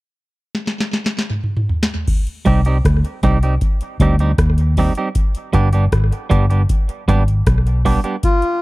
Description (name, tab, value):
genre	roots reggae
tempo	78 BPM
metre	4/4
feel	straight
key	C harmonic minor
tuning	A4 = 435 Hz
part	booming analog drum machine	drums	0.5-8.6 s	crash cymbal, hi-hat, kick drum, rim click, snare drum, toms	-18 LUFS	equal	none
part	clean electric guitar	accompaniment	2.5-8.2 s	G3 to G4	-21 LUFS	right 4 dB	dub echo
part	vintage muted fingered electric bass	bass	2.5-8.0 s	G1 to Eb2	-14 LUFS	equal	none
part	melodica	melody	8.2-8.6 s	F4	-16 LUFS	left 2 dB	none
room	little or no reverb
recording	dry, close 1970s-style studio recording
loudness	-14 LUFS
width	side -20 dB against mid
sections	0.0-2.1 A section; 2.1-8.2 B section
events	drum fill 0.5-2.1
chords	0.0 N.C.; 2.1 Cm; 5.2 G